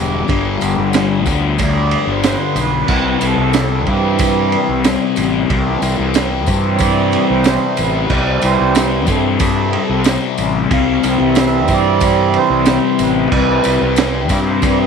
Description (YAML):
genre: psychedelic rock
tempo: 92 BPM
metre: 4/4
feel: straight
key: unclear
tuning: A4 = 436 Hz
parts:
  - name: pedal harmonium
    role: sustained chords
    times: 0.0-14.9 s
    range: D3 to F5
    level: -18 LUFS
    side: right 9 dB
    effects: none
  - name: thick fuzz guitar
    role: riff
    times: 0.0-14.9 s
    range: G2 to C4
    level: -17 LUFS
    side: left 14 dB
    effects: distortion, phaser
  - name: fuzz fingered electric bass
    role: bass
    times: 0.0-14.9 s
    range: E1 to G2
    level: -19 LUFS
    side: equal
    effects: overdrive
  - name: crunchy breakbeat drum kit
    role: drums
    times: 0.3-14.8 s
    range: crash cymbal, kick drum, ride cymbal, snare drum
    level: -19 LUFS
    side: right 4 dB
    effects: none
  - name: tambourine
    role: percussion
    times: 0.3-14.8 s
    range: none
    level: -32 LUFS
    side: left 14 dB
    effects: none
room: moderate echo chamber reverb, RT60 2.2 s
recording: 1960s-style stereo with parts hard left and right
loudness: -12 LUFS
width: side -6 dB against mid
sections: 0.0-14.9 A section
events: harmonium solo 0.0-14.9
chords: 0.0 G; 2.9 C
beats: | 0.29 0.94 1.59 2.24 | 2.89 3.54 4.20 4.85 | 5.50 6.15 6.80 7.45 | 8.10 8.75 9.40 10.06 | 10.71 11.36 12.01 12.66 | 13.32 13.97 14.62